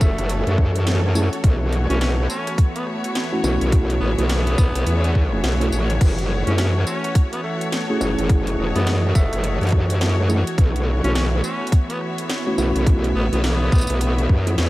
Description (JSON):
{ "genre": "glitch hop", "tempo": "105 BPM", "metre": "4/4", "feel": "swing 61% on 16ths", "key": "unclear", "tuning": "A4 = 443 Hz", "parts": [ { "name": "growling tenor saxophone", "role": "melody", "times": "0.0-14.2 s", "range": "A3 to C#4", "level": "-30 LUFS", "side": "equal", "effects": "tape echo" }, { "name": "warm analog pad", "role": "sustained chords", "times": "0.0-14.7 s", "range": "E3 to D#5", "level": "-28 LUFS", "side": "equal", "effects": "chorus, sidechain pumping" }, { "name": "growl bass", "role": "bass", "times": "0.0-14.7 s", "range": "E1 to F#2", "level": "-20 LUFS", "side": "equal", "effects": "chorus" }, { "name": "drum and bass drum kit", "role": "drums", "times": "0.0-14.7 s", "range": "crash cymbal, hi-hat, rim click, snare drum, tambourine", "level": "-30 LUFS", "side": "equal", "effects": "overdrive" }, { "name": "electronic kick drum", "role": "drums", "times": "0.0-14.4 s", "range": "none", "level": "-15 LUFS", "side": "equal", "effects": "overdrive" }, { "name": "rich studio string section", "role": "texture", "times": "0.0-14.7 s", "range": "B3 to E5", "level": "-30 LUFS", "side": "left 1 dB", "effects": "sidechain pumping" }, { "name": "mellow tine electric piano", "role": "stabs", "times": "1.2-14.5 s", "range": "A3 to G#4", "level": "-28 LUFS", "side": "equal", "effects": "medium stereo tremolo, sidechain pumping, tape echo" } ], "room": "light reverb, digital ambience", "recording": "vinyl crackle", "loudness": "-17 LUFS", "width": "side -17 dB against mid", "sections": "0.0-14.7 A section", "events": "none", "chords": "0.0 F#m7; 1.4 B7sus4; 6.0 F#m7; 10.6 B7sus4" }